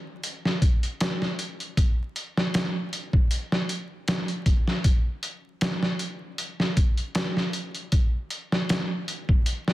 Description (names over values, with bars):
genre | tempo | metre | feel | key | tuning
trip hop | 78 BPM | 4/4 | swing 54% on 16ths | none | none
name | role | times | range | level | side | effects
trip hop sampler-style drum kit | drums | 0.2-9.7 s | hi-hat, kick drum, snare drum | -23 LUFS | equal | none
room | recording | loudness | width
light reverb | dense, heavily limited modern master, vinyl crackle | -24 LUFS | side -16 dB against mid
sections
0.0-9.7 A section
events
none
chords
none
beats
0.23 1.00 | 1.77 2.54 3.31 4.08 | 4.85 5.62 6.38 7.15 | 7.92 8.69 9.46